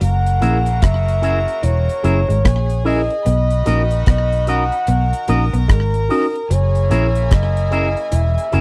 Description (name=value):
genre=lovers rock reggae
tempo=74 BPM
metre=4/4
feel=swing 61% on 16ths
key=B major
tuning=A4 = 437 Hz
part: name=breathy flugelhorn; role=melody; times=0.0-8.6 s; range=A#4 to F#5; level=-24 LUFS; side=equal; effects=tape echo
part: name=clear horn section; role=second line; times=0.0-8.6 s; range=C#3 to F#4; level=-36 LUFS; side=equal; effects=none
part: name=rich studio violin section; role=second line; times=0.0-8.6 s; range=F#4 to B5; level=-35 LUFS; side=equal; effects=none
part: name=electric guitar through a small old amp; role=riff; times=0.0-8.6 s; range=E3 to B3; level=-29 LUFS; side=equal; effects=none
part: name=vintage muted fingered electric bass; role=bass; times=0.0-8.6 s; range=E1 to B1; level=-19 LUFS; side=equal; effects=none
part: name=deep reggae drum kit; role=drums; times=0.0-8.6 s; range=hi-hat, kick drum, rim click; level=-18 LUFS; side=equal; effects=none
part: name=tine electric piano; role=accompaniment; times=0.4-8.6 s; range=C#4 to A#4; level=-24 LUFS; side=equal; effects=phaser, slapback echo
part: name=electric guitar with an envelope filter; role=stabs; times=0.4-8.6 s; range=F#4 to E5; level=-26 LUFS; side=equal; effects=slapback echo
room=little or no reverb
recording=dry, close 1970s-style studio recording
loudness=-17 LUFS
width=mono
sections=0.0-8.6 A section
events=none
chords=0.0 F#9; 3.3 Bmaj7; 6.5 F#9